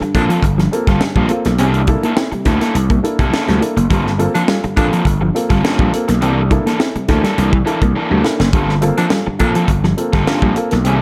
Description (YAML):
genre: funk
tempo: 104 BPM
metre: 4/4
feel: straight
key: G dorian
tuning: A4 = 440 Hz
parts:
  - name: crunchy overdriven guitar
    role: accompaniment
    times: 0.0-11.0 s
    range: E3 to A4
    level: -23 LUFS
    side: equal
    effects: plate reverb
  - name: clean electric guitar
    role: riff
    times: 0.0-10.9 s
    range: F3 to C4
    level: -22 LUFS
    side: equal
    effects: spring reverb
  - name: dark upright piano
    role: stabs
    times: 0.0-11.0 s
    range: G2 to A4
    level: -23 LUFS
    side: equal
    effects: plate reverb
  - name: gritty slap bass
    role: bass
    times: 0.0-11.0 s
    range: F#1 to D2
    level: -19 LUFS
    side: equal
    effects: overdrive
  - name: tight funk drum kit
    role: drums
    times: 0.0-11.0 s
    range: hi-hat, kick drum, snare drum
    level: -20 LUFS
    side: equal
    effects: none
  - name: clear baritone saxophone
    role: second line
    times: 0.1-0.2, 4.3-4.9, 9.0-9.5 s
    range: D4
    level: -26 LUFS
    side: equal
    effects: plate reverb
room: light reverb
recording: none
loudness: -15 LUFS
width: mono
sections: 0.0-11.0 A section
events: drum fill 8.0-8.5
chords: 0.0 Gm11; 1.6 C13; 3.9 Gm11; 6.2 C13; 8.5 Gm11